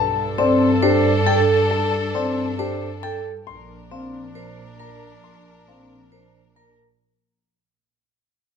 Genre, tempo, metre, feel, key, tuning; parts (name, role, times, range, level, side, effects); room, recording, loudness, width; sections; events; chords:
classical, minimalist pattern music; 136 BPM; 4/4; straight; A4 = 440 Hz
warm grand piano; melody; 0.0-6.8 s; G4 to C6; -25 LUFS; left 11 dB
mellow soprano saxophone; second line; 0.0-6.7 s; D4 to A4; -26 LUFS; left 1 dB
warm symphonic violin section; sustained chords; 0.0-6.7 s; D4 to Bb4; -29 LUFS; left 6 dB
rich symphonic double bass section; bass; 0.0-6.9 s; Bb1 to G2; -26 LUFS; right 4 dB
dark concert grand piano; accompaniment; 0.4-6.0 s; C4 to D4; -26 LUFS; left 1 dB
vibraphone with medium hard mallets; arpeggios; 0.4-6.8 s; C4 to C5; -22 LUFS; right 2 dB
light reverb; -17 LUFS; side -7 dB against mid
0.0-7.0 A section
fade-out 0.0-7.0
0.0 Gsus2; 3.5 Bb